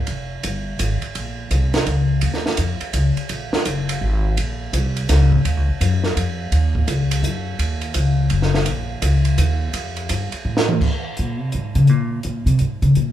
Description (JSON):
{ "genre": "modal jazz", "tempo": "168 BPM", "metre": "3/4", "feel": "swing 64% on 8ths", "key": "Eb dorian", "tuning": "A4 = 441 Hz", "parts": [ { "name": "upright bass", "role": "bass", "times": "0.1-13.1 s", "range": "F1 to Db3", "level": "-18 LUFS", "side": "left 1 dB", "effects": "none" }, { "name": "compact cocktail drum kit", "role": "drums", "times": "0.1-13.1 s", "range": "crash cymbal, hi-hat, kick drum, ride cymbal, snare drum, toms", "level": "-24 LUFS", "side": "right 2 dB", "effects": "none" } ], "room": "light reverb", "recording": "band playing live in one room", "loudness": "-17 LUFS", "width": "side -12 dB against mid", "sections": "0.0-2.2 A section; 2.2-10.8 B section; 10.8-13.1 C section", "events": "drum fill 10.4-10.8; upright bass solo 10.8-13.1", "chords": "none" }